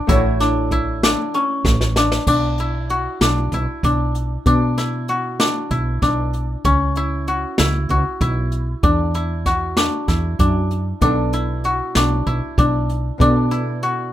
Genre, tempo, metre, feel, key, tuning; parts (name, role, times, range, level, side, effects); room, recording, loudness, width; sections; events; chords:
progressive instrumental, band music in an uneven meter; 192 BPM (eighths); 7/8; straight; A4 = 443 Hz
hollow-body jazz guitar; accompaniment; 0.0-2.2, 11.0-14.1 s; B2 to D5; -25 LUFS; right 1 dB; double-tracked left and right, plate reverb
koto; arpeggios; 0.0-14.1 s; C#4 to F#4; -20 LUFS; left 2 dB; plate reverb
woody fretless electric bass; bass; 0.1-14.1 s; A1 to B2; -20 LUFS; right 1 dB; ensemble chorus
jazz brush drum kit; drums; 0.1-14.0 s; crash cymbal, hi-hat, kick drum, snare drum; -21 LUFS; equal
moderate small room reverb, RT60 0.5 s; rough home demo mix; -16 LUFS; side -12 dB against mid
0.0-2.3 A section; 2.3-14.1 B section
drum fill 1.7-2.3
0.0 A6; 2.3 Bm; 6.7 C#m7; 8.8 Dadd9/E; 11.0 Bm7